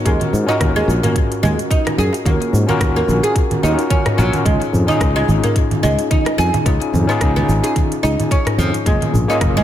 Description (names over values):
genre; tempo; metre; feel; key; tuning
organic downtempo; 109 BPM; 4/4; swing 56% on 16ths; unclear; A4 = 443 Hz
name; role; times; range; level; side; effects
overdriven tine electric piano; accompaniment; 0.0-9.6 s; A#3 to A#4; -21 LUFS; left 3 dB; fast tremolo, sidechain pumping, ping-pong delay
oud; arpeggios; 0.1-9.6 s; E#3 to G#4; -20 LUFS; right 1 dB; ping-pong delay
sustaining fretless electric bass; bass; 0.1-9.6 s; F#1 to G#2; -18 LUFS; equal; tube saturation, sidechain pumping
electronic kick drum; drums; 0.1-9.5 s; none; -17 LUFS; equal; none
organic electronic drum kit; drums; 0.1-9.6 s; congas, hi-hat, rim click, shaker; -23 LUFS; right 2 dB; none
darbuka; percussion; 0.2-9.4 s; none; -24 LUFS; left 1 dB; none
room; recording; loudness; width
light reverb, digital ambience; none; -14 LUFS; side -11 dB against mid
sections
0.0-9.6 A section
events
none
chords
0.1 D#m7; 4.5 C#add9; 8.9 F#maj7